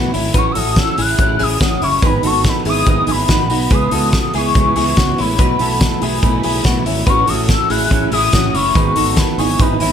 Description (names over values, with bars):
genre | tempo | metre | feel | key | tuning
jangly indie pop | 143 BPM | 4/4 | straight | unclear | A4 = 440 Hz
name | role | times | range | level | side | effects
warm velvety synth lead | melody | 0.0-9.9 s | B5 to F#6 | -18 LUFS | left 3 dB | chorus
fingerpicked steel-string acoustic guitar | accompaniment | 0.0-9.9 s | G#2 to E4 | -21 LUFS | right 7 dB | none
direct-recorded clean electric guitar | arpeggios | 0.0-9.9 s | B3 to B4 | -22 LUFS | left 2 dB | wide subtle chorus
fretless electric bass | bass | 0.0-9.9 s | F#1 to C#2 | -21 LUFS | equal | none
loose indie drum kit | drums | 0.1-9.9 s | hi-hat, kick drum, snare drum | -16 LUFS | equal | none
phased string machine | sustained chords | 4.1-9.9 s | C#3 to F#4 | -28 LUFS | left 1 dB | ensemble chorus, phaser
room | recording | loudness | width
moderate small room ambience, RT60 0.5 s | none | -12 LUFS | side -8 dB against mid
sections
0.0-9.9 A section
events
none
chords
0.3 F#m7/A; 2.0 G#m7; 3.7 C#m7; 5.4 B7sus4; 7.1 F#m7/A; 8.8 G#m7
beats
| 0.34 0.76 1.18 1.60 | 2.02 2.44 2.87 3.29 | 3.71 4.13 4.55 4.97 | 5.39 5.81 6.23 6.65 | 7.07 7.49 7.91 8.33 | 8.75 9.17 9.59